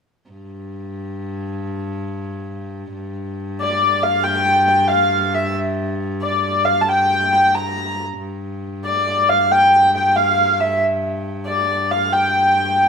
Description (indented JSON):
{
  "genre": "medieval",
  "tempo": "91 BPM (dotted quarters)",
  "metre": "6/8",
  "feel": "straight",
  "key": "G dorian",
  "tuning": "A4 = 440 Hz",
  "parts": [
    { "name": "warm viola da gamba", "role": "drone", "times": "0.3-12.9 s", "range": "G2", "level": "-26 LUFS", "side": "left 1 dB", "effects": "none" },
    { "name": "dark hurdy-gurdy", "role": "melody", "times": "3.6-12.9 s", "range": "D5 to Bb5", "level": "-15 LUFS", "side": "equal", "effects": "none" }
  ],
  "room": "wet stone room reverb, RT60 1.0 s",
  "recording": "band playing live in one room",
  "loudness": "-15 LUFS",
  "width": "side -6 dB against mid",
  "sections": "0.3-2.9 A section; 2.9-12.9 B section",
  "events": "none",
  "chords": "none",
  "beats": "| 0.30 0.96 | 1.61 2.27 | 2.93 3.59 | 4.25 4.91 | 5.57 6.22 | 6.88 7.54 | 8.20 8.85 | 9.51 10.16 | 10.82 11.48 | 12.13 12.79"
}